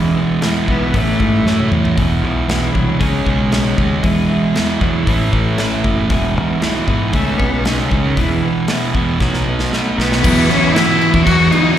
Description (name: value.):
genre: quiet-loud alternative rock.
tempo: 116 BPM.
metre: 4/4.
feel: straight.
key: E major.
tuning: A4 = 440 Hz.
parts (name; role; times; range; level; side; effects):
bright cello; melody; 0.0-11.8 s; D#3 to F#4; -19 LUFS; left 1 dB; slapback echo, tape echo.
twelve-string electric guitar; arpeggios; 0.0-10.2 s; E2 to G#4; -23 LUFS; left 6 dB; slapback echo.
thick fuzz guitar; riff; 0.0-11.8 s; E2 to E4; -18 LUFS; right 6 dB; distortion, slapback echo.
fuzz fingered electric bass; bass; 0.0-11.5 s; E1 to E3; -19 LUFS; left 1 dB; overdrive.
big rock drum kit; drums; 0.4-11.6 s; crash cymbal, hi-hat, kick drum, snare drum, toms; -20 LUFS; left 1 dB; none.
sludgy distorted guitar; riff; 10.2-11.8 s; E2 to E3; -21 LUFS; left 2 dB; none.
thick fuzz guitar; riff; 10.2-11.8 s; E3 to E4; -18 LUFS; left 13 dB; distortion, slapback echo.
room: moderate club reverb, RT60 0.7 s.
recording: live gig heard through the venue's PA, recital hall reverb.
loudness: -13 LUFS.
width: side -10 dB against mid.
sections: 0.0-10.2 A section; 10.2-11.8 B section.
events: drum fill 1.5-2.0, 9.2-10.2.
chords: 0.0 E; 0.9 A; 2.0 E; 3.0 C#sus2; 4.0 E; 5.1 A; 6.1 E; 7.1 C#sus2; 8.2 E; 9.2 B; 10.2 Esus2.